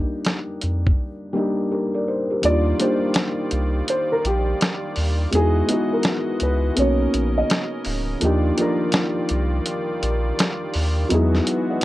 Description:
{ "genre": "lo-fi hip hop", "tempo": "83 BPM", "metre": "4/4", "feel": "swing 62% on 16ths", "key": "Eb major", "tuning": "A4 = 440 Hz", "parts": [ { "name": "felt-muted upright piano", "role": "accompaniment", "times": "0.0-11.8 s", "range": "F3 to F#5", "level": "-23 LUFS", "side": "equal", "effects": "cassette tape, low-pass filter" }, { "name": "soft dub sub bass", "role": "bass", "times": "0.0-11.4 s", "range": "D1 to F2", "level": "-21 LUFS", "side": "equal", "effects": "transformer saturation" }, { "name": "dusty soul sampler-style drum kit", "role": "drums", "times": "0.2-11.8 s", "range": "hi-hat, kick drum, snare drum", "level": "-22 LUFS", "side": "equal", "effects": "none" }, { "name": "pipe organ, strings celeste", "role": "sustained chords", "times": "2.4-11.8 s", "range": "C#3 to D#5", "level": "-30 LUFS", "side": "right 1 dB", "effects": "low-pass filter" }, { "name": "dark upright piano", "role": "melody", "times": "2.5-7.7 s", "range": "G4 to D#5", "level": "-24 LUFS", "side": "equal", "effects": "low-pass filter" } ], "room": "little or no reverb", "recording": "dry, gritty hardware recording", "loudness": "-19 LUFS", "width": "side -16 dB against mid", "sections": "0.0-2.4 A section; 2.4-11.8 B section", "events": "kick muted 2.4-11.8", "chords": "0.0 Ebmaj9; 5.3 Emaj9; 6.8 Bmaj9; 8.2 Ebmaj9; 11.1 Emaj9", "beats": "0.27 0.99 1.71 | 2.43 3.16 3.88 4.60 | 5.33 6.05 6.77 7.49 | 8.22 8.94 9.66 10.39 | 11.11 11.83" }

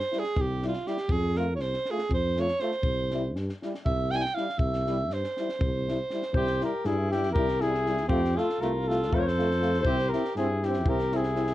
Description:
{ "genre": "balkan folk, Balkan brass band", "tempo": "240 BPM (eighths)", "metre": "7/8", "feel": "straight", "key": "unclear", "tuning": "A4 = 440 Hz", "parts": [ { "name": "bright alto saxophone", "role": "second line", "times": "0.0-11.5 s", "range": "C4 to Ab5", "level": "-31 LUFS", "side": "right 3 dB", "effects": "none" }, { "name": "compact cocktail drum kit", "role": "percussion", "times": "0.0-11.5 s", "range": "kick drum, snare drum", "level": "-33 LUFS", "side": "equal", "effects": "none" }, { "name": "clear euphonium", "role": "accompaniment", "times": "0.1-11.5 s", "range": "E4 to F4", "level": "-34 LUFS", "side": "left 4 dB", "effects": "none" }, { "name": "warm trombone", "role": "accompaniment", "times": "0.1-11.4 s", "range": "G3 to C4", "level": "-36 LUFS", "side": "right 3 dB", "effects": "none" }, { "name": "dark tuba", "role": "bass", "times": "0.4-11.5 s", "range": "C2 to G2", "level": "-29 LUFS", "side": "equal", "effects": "none" }, { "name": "mellow flugelhorn", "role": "melody", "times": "6.3-11.5 s", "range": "G4 to Db5", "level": "-29 LUFS", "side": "left 2 dB", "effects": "none" } ], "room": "light reverb", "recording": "worn, warbling old tape, cassette tape, warbly pitch drift", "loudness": "-25 LUFS", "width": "side -14 dB against mid", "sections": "0.0-6.3 A section; 6.3-11.5 B section", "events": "alto saxophone solo 0.0-6.3", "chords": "0.0 C; 1.1 F; 2.8 C; 8.1 F; 9.8 C", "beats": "0.10 0.35 0.60 0.85 | 1.10 1.35 1.60 1.85 2.10 2.35 2.59 | 2.84 3.09 3.34 3.59 3.84 4.09 4.34 | 4.59 4.84 5.09 5.34 5.59 5.84 6.09 | 6.34 6.59 6.84 7.09 7.34 7.59 7.84 | 8.09 8.34 8.59 8.84 9.09 9.34 9.59 | 9.84 10.09 10.34 10.59 10.84 11.09 11.34" }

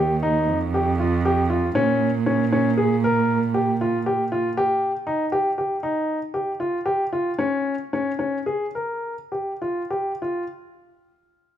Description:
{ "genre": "contemporary instrumental, chamber music in an uneven meter", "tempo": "190-236 BPM (eighths)", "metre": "11/8", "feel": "straight", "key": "Bb dorian", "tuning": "A4 = 439 Hz", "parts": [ { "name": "clear baby grand piano", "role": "arpeggios", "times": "0.0-10.4 s", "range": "Db4 to Bb4", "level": "-22 LUFS", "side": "left 1 dB", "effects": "none" }, { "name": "warm cello", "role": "bass", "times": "0.0-4.5 s", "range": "Eb2 to Bb2", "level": "-22 LUFS", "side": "right 5 dB", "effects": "none" } ], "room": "light reverb", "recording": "minimal, uncompressed stereo recording", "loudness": "-20 LUFS", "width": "side -10 dB against mid", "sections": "0.0-10.5 A section", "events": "slowing down 6.1-10.5", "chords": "0.5 Fsus2; 1.8 Bbm; 4.6 Ebadd9; 7.4 Bbm", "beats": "0.23 0.49 0.74 0.99 1.25 1.50 | 1.76 2.01 2.27 2.52 2.78 3.03 3.29 3.54 3.80 4.05 4.31 | 4.56 4.82 5.07 5.33 5.58 5.84 6.10 6.35 6.61 6.87 7.13 | 7.39 7.66 7.92 8.20 8.47 8.75 9.03 9.32 9.61 9.91 10.22" }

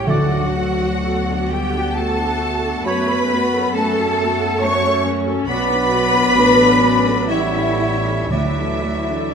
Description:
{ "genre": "classical", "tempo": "58-70 BPM", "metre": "3/4", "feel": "rubato", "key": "D major", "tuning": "A4 = 440 Hz", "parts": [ { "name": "rich symphonic violin section", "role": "melody", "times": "0.0-9.3 s", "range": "E5 to C#6", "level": "-26 LUFS", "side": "left 4 dB", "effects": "none" }, { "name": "bright large flute ensemble", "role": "second line", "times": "0.0-9.3 s", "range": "E5 to C#6", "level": "-25 LUFS", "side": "left 2 dB", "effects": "none" }, { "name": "clear symphonic violin section", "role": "second line", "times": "0.0-9.3 s", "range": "E5 to C#6", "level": "-27 LUFS", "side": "left 1 dB", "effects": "none" }, { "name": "warm clarinet", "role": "second line", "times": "0.0-9.3 s", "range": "A3 to D4", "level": "-27 LUFS", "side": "left 1 dB", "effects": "none" }, { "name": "rich symphonic viola section", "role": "accompaniment", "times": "0.0-9.3 s", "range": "A3 to B4", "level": "-27 LUFS", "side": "right 2 dB", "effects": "none" }, { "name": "dark French horn section", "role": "sustained chords", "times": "0.0-9.3 s", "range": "E3 to C#4", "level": "-23 LUFS", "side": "left 3 dB", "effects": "none" }, { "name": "rich studio cello section", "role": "bass", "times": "0.0-9.3 s", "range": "E4 to C#5", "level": "-22 LUFS", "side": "right 3 dB", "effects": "none" }, { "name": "clear oboe", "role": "second line", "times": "0.1-9.3 s", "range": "C#5 to D5", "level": "-28 LUFS", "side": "equal", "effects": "none" }, { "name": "mellow bassoon", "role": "accompaniment", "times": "0.1-9.3 s", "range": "F#3 to A3", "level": "-27 LUFS", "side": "right 2 dB", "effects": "none" }, { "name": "clear symphonic double bass section", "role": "bass", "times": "0.1-9.3 s", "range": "A1 to F#2", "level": "-26 LUFS", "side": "right 3 dB", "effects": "none" }, { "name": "timpani", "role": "percussion", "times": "0.1-1.5, 8.3-9.3 s", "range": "D3", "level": "-23 LUFS", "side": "equal", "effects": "none" } ], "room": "wet concert hall reverb, RT60 2.1 s", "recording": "minimal, uncompressed stereo recording", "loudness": "-15 LUFS", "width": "side -6 dB against mid", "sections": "0.0-9.3 A section", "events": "none", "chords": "0.1 D; 2.9 F#m; 5.5 Bm; 6.4 D/A; 7.3 A7; 8.3 D", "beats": "| 0.08 1.04 1.95 | 2.85 3.75 4.62 | 5.48 6.35 7.30 | 8.31 9.32" }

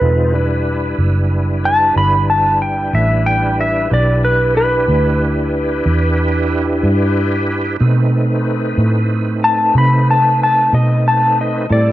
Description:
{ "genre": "slow blues", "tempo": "62 BPM (dotted quarters)", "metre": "12/8", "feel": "straight", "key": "E minor", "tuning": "A4 = 440 Hz", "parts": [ { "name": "clean lap steel guitar", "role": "melody", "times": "0.0-11.9 s", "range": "B4 to B5", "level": "-15 LUFS", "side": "left 1 dB", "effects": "cassette tape, plate reverb" }, { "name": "bright tonewheel organ", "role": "sustained chords", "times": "0.0-11.9 s", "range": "G3 to B4", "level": "-20 LUFS", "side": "right 1 dB", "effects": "slow rotary speaker, overdrive, chorus vibrato, plate reverb" }, { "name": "vintage muted fingered electric bass", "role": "bass", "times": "0.0-11.9 s", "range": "E1 to C3", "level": "-16 LUFS", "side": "right 1 dB", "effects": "none" } ], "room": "light reverb", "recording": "home recording on cassette", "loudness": "-12 LUFS", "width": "side -14 dB against mid", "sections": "0.0-11.9 A section", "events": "electric slide guitar solo 0.0-11.9", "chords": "0.0 Em7; 7.8 B7b9", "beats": "| 0.01 0.99 1.97 2.94 | 3.92 4.89 5.87 6.84 | 7.81 8.79 9.76 10.73 | 11.71" }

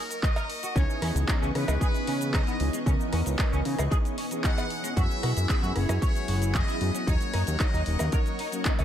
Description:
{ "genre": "nu-disco, nu disco", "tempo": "114 BPM", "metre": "4/4", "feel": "straight", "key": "C# dorian", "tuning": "A4 = 440 Hz", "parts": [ { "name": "muted trumpet section", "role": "melody", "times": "0.0-8.8 s", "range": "A#4 to F#5", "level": "-36 LUFS", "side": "left 1 dB", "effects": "tape echo" }, { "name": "string machine, full ensemble", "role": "sustained chords", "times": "0.0-8.8 s", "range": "B3 to C#6", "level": "-36 LUFS", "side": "equal", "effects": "ensemble chorus, vintage 12-bit sampler grit, sidechain pumping" }, { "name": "house drum kit", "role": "drums", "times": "0.1-8.8 s", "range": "cabasa, handclaps, hi-hat, rim click", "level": "-35 LUFS", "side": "equal", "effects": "analog delay" }, { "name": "electric guitar at the edge of break-up", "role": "riff", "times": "0.2-8.8 s", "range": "G#3 to D#5", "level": "-37 LUFS", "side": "right 1 dB", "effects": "ensemble chorus, analog delay" }, { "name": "electronic kick drum", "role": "drums", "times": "0.2-8.8 s", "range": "none", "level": "-26 LUFS", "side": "equal", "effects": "none" }, { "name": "cowbell", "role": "percussion", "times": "0.4-8.8 s", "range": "none", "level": "-37 LUFS", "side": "right 4 dB", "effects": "none" }, { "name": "mellow synth brass", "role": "accompaniment", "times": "0.8-8.8 s", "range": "E3 to C#5", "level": "-34 LUFS", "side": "left 1 dB", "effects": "chorus, analog delay" }, { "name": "fat analog bass", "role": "bass", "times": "0.8-8.8 s", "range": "D#1 to C#3", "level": "-27 LUFS", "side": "equal", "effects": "none" } ], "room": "little or no reverb", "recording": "echo-heavy mix", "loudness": "-24 LUFS", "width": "side -10 dB against mid", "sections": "0.0-8.8 A section", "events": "none", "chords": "0.0 D#m7; 0.8 C#m9; 5.0 F#9sus4; 7.1 D#m7", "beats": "0.23 | 0.76 1.28 1.81 2.34 | 2.86 3.39 3.92 4.44 | 4.97 5.49 6.02 6.55 | 7.07 7.60 8.13 8.65" }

